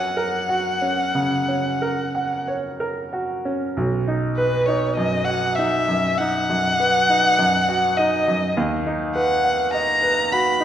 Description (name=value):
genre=classical, romantic duo for violin and grand piano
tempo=45-52 BPM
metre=4/4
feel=rubato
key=B major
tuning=A4 = 440 Hz
part: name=warm violin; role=melody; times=0.0-10.6 s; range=B4 to B5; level=-20 LUFS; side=left 2 dB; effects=none
part: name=bright grand piano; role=accompaniment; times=0.0-10.6 s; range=B1 to F#5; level=-22 LUFS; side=right 2 dB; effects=none
room=wet recital hall reverb, RT60 1.7 s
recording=none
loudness=-18 LUFS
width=side -10 dB against mid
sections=0.0-10.6 A section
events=none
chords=0.0 F#; 3.8 B; 8.6 B/D#